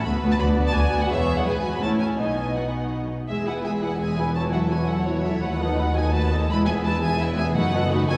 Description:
quick classical-period movement for string orchestra; 169 BPM; 3/4; straight; E major; A4 = 440 Hz
warm symphonic violin section; melody; 0.0-8.2 s; C#5 to B5; -32 LUFS; equal
warm symphonic violin section; second line; 0.0-8.2 s; E4 to G#5; -33 LUFS; equal
rich symphonic viola section; accompaniment; 0.0-8.2 s; E3 to G#4; -28 LUFS; equal
rich symphonic cello section; bass; 0.1-8.2 s; D2 to B2; -29 LUFS; equal
rich symphonic double bass section; bass; 0.1-8.2 s; E1 to D#2; -30 LUFS; equal
wet concert hall reverb, RT60 2.2 s; heard from further back in the room; -23 LUFS; mono
0.0-3.3 A section; 3.3-8.2 B section
0.1 Bm/D; 1.1 E; 1.8 A; 2.2 B; 3.3 E; 4.4 F#m7/E; 5.4 B7/D#; 6.5 E; 7.6 B7/F#

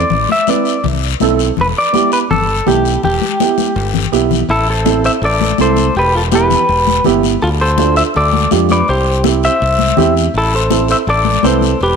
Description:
latin, cumbia; 164 BPM; 4/4; straight; A minor; A4 = 439 Hz
clean electric guitar; melody; 0.0-12.0 s; E4 to E5; -14 LUFS; left 1 dB; spring reverb, slapback echo
modern bright fingered electric bass; bass; 0.0-12.0 s; E1 to F2; -17 LUFS; equal; tube saturation
congas; percussion; 0.1-12.0 s; -19 LUFS; left 15 dB
guiro; percussion; 0.1-12.0 s; -25 LUFS; left 16 dB
dark upright piano; accompaniment; 0.5-11.7 s; B3 to B4; -17 LUFS; right 14 dB
light reverb, small room reverb; 1960s-style stereo with parts hard left and right; -11 LUFS; side -6 dB against mid
0.0-4.5 A section; 4.5-12.0 B section
drum fill 3.4-4.5
0.0 Am; 1.6 Em; 4.5 Am; 6.0 Em; 7.4 Dm; 8.9 C; 10.3 Am

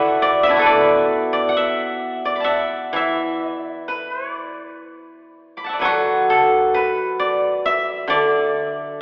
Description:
chinese traditional, Chinese solo plucked strings; 60-68 BPM; 4/4; rubato; D gong mode; A4 = 440 Hz
steel-string zither; solo; 0.0-9.0 s; D3 to D6; -16 LUFS; equal
wet concert hall reverb, RT60 2.5 s; recorded in a church or concert hall, telephone sound; -16 LUFS; side -32 dB against mid
0.0-5.8 A section; 5.8-9.0 B section

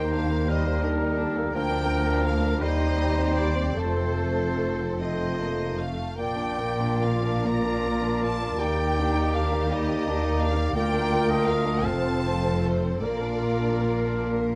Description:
classical; 45-57 BPM (dotted quarters); 6/8; rubato; Bb major; A4 = 440 Hz
rich studio violin section; melody; 0.0-14.2 s; C5 to Bb5; -35 LUFS; equal
warm clarinet; second line; 0.0-14.6 s; D4 to F4; -35 LUFS; equal
warm oboe; second line; 0.0-14.6 s; Bb4 to F5; -36 LUFS; equal
warm studio violin section; second line; 0.0-14.6 s; G3 to C5; -36 LUFS; equal
mellow bassoon; accompaniment; 0.0-14.6 s; Eb3 to C4; -34 LUFS; equal
warm studio viola section; accompaniment; 0.0-14.6 s; F4 to C5; -37 LUFS; equal
rich studio cello section; bass; 0.0-14.6 s; D2 to Bb2; -32 LUFS; equal
warm studio double bass section; bass; 0.0-14.6 s; F1 to Eb2; -32 LUFS; equal
light reverb; -25 LUFS; mono
0.0-14.6 A section
0.0 Ebmaj7; 1.5 Bb/D; 2.6 Cm/Eb; 3.8 F; 6.2 Bb; 8.6 Ebmaj7; 10.8 Bb/D; 11.8 F; 13.0 Bb

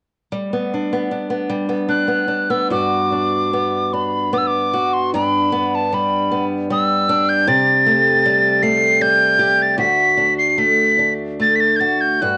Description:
celtic folk, Celtic slow air; 76 BPM; 3/4; rubato; G major; A4 = 442 Hz
picked old ladder-braced acoustic guitar; accompaniment; 0.3-12.4 s; D2 to G4; -22 LUFS; equal
hollow tin whistle; melody; 1.9-12.4 s; A5 to C7; -18 LUFS; equal; cassette tape
light reverb, studio reverb; home recording on cassette; -17 LUFS; mono
0.3-2.7 A section; 2.7-12.4 B section
0.3 G; 2.7 Gmaj7; 5.1 G6; 7.5 C5; 9.8 D

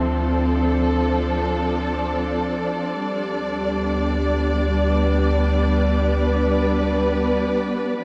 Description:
ambient; free time; A4 = 440 Hz
dark studio string section; sustained chords; 0.0-8.0 s; F3 to D5; -23 LUFS; equal; low-pass filter
round analog bass; bass; 0.0-8.0 s; D2; -25 LUFS; equal
wet shimmer reverb, RT60 8.3 s; dark, warm production; -21 LUFS; mono
0.0-8.0 A section
0.0 Dm7; 3.0 G/D

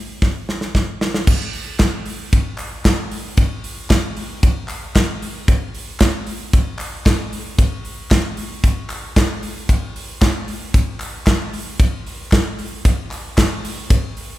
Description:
indie pop; 114 BPM; 4/4; straight
modern studio drum kit; drums; 0.2-14.3 s; crash cymbal, hi-hat, kick drum, ride cymbal, snare drum; -17 LUFS; equal
group handclap; percussion; 1.8-13.5 s; -33 LUFS; left 1 dB
moderate recital hall reverb, RT60 1.6 s; recorded in a church or concert hall; -17 LUFS; side -16 dB against mid
0.0-1.3 A section; 1.3-14.4 B section
drum fill 0.2-1.3

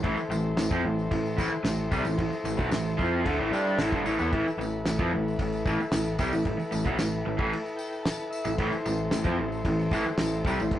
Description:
garage rock duo or trio; 113 BPM; 4/4; straight; A minor; A4 = 436 Hz
overdriven combo organ; sustained chords; 0.0-10.8 s; E4 to A5; -33 LUFS; left 2 dB
raw garage guitar; riff; 0.0-10.8 s; G2 to G4; -27 LUFS; equal; overdrive
growling picked electric bass; bass; 0.0-10.8 s; G1 to G2; -34 LUFS; equal; overdrive
cloth-damped thuddy drum kit; drums; 0.0-10.8 s; crash cymbal, kick drum, snare drum; -32 LUFS; equal
tambourine; percussion; 0.2-10.7 s; -45 LUFS; left 2 dB
moderate studio reverb, RT60 0.5 s; rough rehearsal-room recording, tube saturation, nothing above 10.4 kHz; -25 LUFS; side -12 dB against mid
0.0-10.8 A section
transistor combo organ fill 7.5-8.6
0.0 Am

